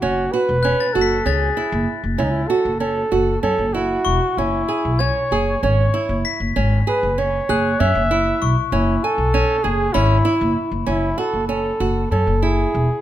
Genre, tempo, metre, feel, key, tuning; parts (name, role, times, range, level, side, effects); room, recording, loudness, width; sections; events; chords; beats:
contemporary instrumental, chamber music in an uneven meter; 194 BPM (eighths); 7/8; straight; F# minor; A4 = 440 Hz
breathy flugelhorn; melody; 0.0-13.0 s; D#4 to E5; -21 LUFS; right 1 dB
nylon-string guitar; arpeggios; 0.0-12.9 s; C#4 to G#5; -23 LUFS; right 4 dB
upright bass; bass; 0.0-12.9 s; E1 to F#2; -21 LUFS; equal
glockenspiel with brass mallets; texture; 0.6-11.1 s; B5 to B6; -26 LUFS; left 12 dB
light reverb; close, detailed microphones; -16 LUFS; side -12 dB against mid
0.0-13.0 A section
0.0 F#m7; 4.4 C#m/F#; 10.9 F#m7
| 0.01 0.32 0.63 0.94 1.25 1.55 1.86 | 2.17 2.48 2.79 3.10 3.42 3.73 4.05 | 4.37 4.68 4.99 5.31 5.62 5.93 6.24 | 6.55 6.86 7.17 7.48 7.79 8.10 8.41 | 8.72 9.03 9.33 9.64 9.95 10.25 10.56 | 10.87 11.18 11.49 11.80 12.11 12.43 12.75